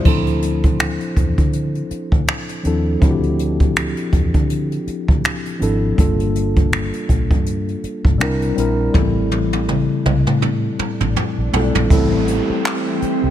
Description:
contemporary R&B; 81 BPM; 4/4; swing 58% on 16ths; D minor; A4 = 440 Hz
mellow tine electric piano; accompaniment; 0.0-13.3 s; F3 to C5; -21 LUFS; left 1 dB; slow stereo tremolo
vintage muted fingered electric bass; bass; 0.1-13.3 s; G1 to D3; -21 LUFS; equal
jazz brush drum kit; drums; 0.1-13.2 s; crash cymbal, finger snaps, handclaps, hi-hat, kick drum, toms; -18 LUFS; equal
swell and downlifter; sound effects; 10.7-13.3 s; -30 LUFS; right 2 dB
glassy FM pad; sustained chords; 12.4-13.3 s; E3 to G4; -22 LUFS; right 4 dB; ensemble chorus, built-in reverb
studio ambience; -15 LUFS; side -11 dB against mid
0.0-11.9 A section; 11.9-13.3 B section
drum fill 8.9-11.9; swell 10.7-11.9
0.1 Dm9; 6.0 Gm7; 8.2 C9; 8.9 Am7

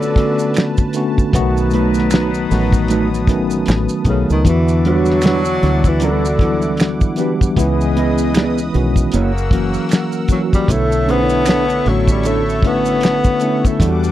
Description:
R&B, neo-soul; 77 BPM; 4/4; swing 58% on 16ths; A4 = 440 Hz
breathy tenor saxophone; melody; 0.0-14.0 s; C#3 to B3; -18 LUFS; left 1 dB; slapback echo
tine electric piano; accompaniment; 0.0-14.1 s; C#3 to C#5; -18 LUFS; left 1 dB; medium stereo tremolo
warm analog pad; sustained chords; 0.0-14.1 s; G3 to E6; -28 LUFS; equal; chorus, tremolo
mellow horn section; stabs; 0.0-14.1 s; B2 to D#5; -28 LUFS; left 9 dB
deep dub fingered electric bass; bass; 0.0-14.1 s; F#1 to E2; -19 LUFS; equal
maracas and finger snaps; percussion; 0.0-14.1 s; -30 LUFS; right 6 dB
cloth-damped thuddy drum kit; drums; 0.2-14.0 s; hi-hat, kick drum, snare drum; -15 LUFS; equal
mellow electric guitar; second line; 1.7-12.4 s; G3 to D#5; -20 LUFS; right 6 dB; spring reverb
little or no reverb; dry, close 1970s-style studio recording; -13 LUFS; side -13 dB against mid
0.0-14.1 A section
0.0 Bm9; 1.3 B7; 4.5 Em9; 7.6 C#m9; 9.1 F#7; 10.7 Bm11

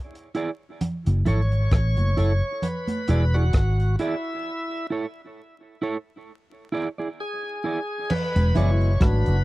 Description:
roots reggae; 66 BPM; 4/4; swing 56% on 16ths; A4 = 440 Hz
crunchy breakbeat drum kit; drums; 0.2-9.4 s; crash cymbal, hi-hat, kick drum, rim click; -24 LUFS; equal
electric guitar at the edge of break-up; accompaniment; 0.3-8.7 s; E4 to D5; -30 LUFS; right 3 dB; vibrato effect, tape echo
congas; percussion; 0.8-9.2 s; -29 LUFS; right 2 dB
vintage muted fingered electric bass; bass; 1.1-9.4 s; E1 to A1; -20 LUFS; equal
bright tonewheel organ; melody; 1.3-9.4 s; E4 to C#5; -30 LUFS; equal; overdrive, slow rotary speaker, tape echo
mellow trombone section; second line; 8.5-9.4 s; B2 to F#4; -28 LUFS; left 3 dB; tape echo
little or no reverb; dry, close 1970s-style studio recording, vinyl crackle; -21 LUFS; side -19 dB against mid
0.0-8.1 A section; 8.1-9.4 B section
break 4.5-8.1
0.0 E7; 0.8 F#m7; 2.6 E7; 4.5 Esus4; 6.3 E7

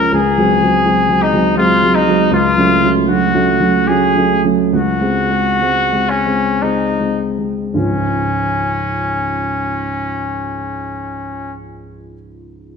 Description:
classical, romantic duo for trumpet and grand piano; 50-84 BPM; 3/4; rubato; Db major; A4 = 436 Hz
bright trumpet; melody; 0.0-11.6 s; Db4 to Bb4; -16 LUFS; left 2 dB
dark baby grand piano; accompaniment; 0.0-12.8 s; Db2 to F4; -16 LUFS; right 2 dB
wet recital hall reverb, RT60 1.6 s; -13 LUFS; side -6 dB against mid
0.0-7.7 A section; 7.7-10.8 B section
slowing down 1.2-7.7
0.1 Ab7/Db; 2.3 Gbm/Db; 4.7 Ab7/Db; 7.7 Db

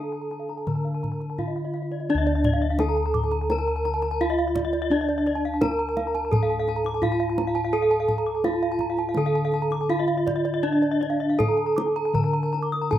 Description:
Balinese gamelan; 84 BPM; 4/4; uneven beats; D pelog; A4 = 440 Hz
gamelan-type bronze metallophone; melody; 0.0-13.0 s; D4 to Bb4-20c; -25 LUFS; right 1 dB
gamelan-type bronze metallophone; arpeggios; 0.0-13.0 s; D5 to Eb6+20c; -31 LUFS; left 6 dB
gamelan-type bronze metallophone; arpeggios; 0.0-12.7 s; D5 to D6; -32 LUFS; right 5 dB
gamelan-type bossed gongs; bass; 0.0-13.0 s; D2 to A4-30c; -28 LUFS; left 1 dB
kendang; percussion; 0.3-13.0 s; -29 LUFS; right 1 dB
light reverb; rough home demo mix; -22 LUFS; side -12 dB against mid
0.0-2.1 A section; 2.1-13.0 B section

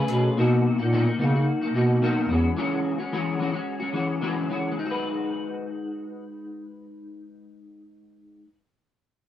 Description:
indie pop; 109 BPM; 4/4; straight; G# minor; A4 = 440 Hz
electric guitar through a small old amp; accompaniment; 0.0-8.5 s; B2 to B4; -26 LUFS; left 2 dB; ensemble chorus, warbly pitch drift
mellow bass clarinet; bass; 0.0-2.5 s; E2 to C#3; -22 LUFS; equal
little or no reverb; dry, close 1970s-style studio recording; -22 LUFS; side -12 dB against mid
0.0-4.8 A section; 4.8-7.0 B section
0.4 Bmaj7; 2.3 E69; 4.8 G#m7

